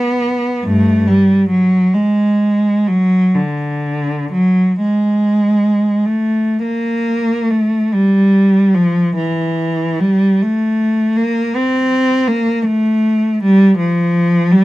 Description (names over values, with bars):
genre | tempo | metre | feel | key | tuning
classical, free, expressive piece for unaccompanied cello | 26-56 BPM (dotted quarters) | 6/8 | rubato | G dorian from 6.6 s | A4 = 439 Hz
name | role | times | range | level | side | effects
rich cello | solo | 0.0-14.6 s | G2 to C4 | -12 LUFS | equal | none
room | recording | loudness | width
light reverb | none | -12 LUFS | side -18 dB against mid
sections
0.0-6.6 A section; 6.6-14.6 B section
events
none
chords
none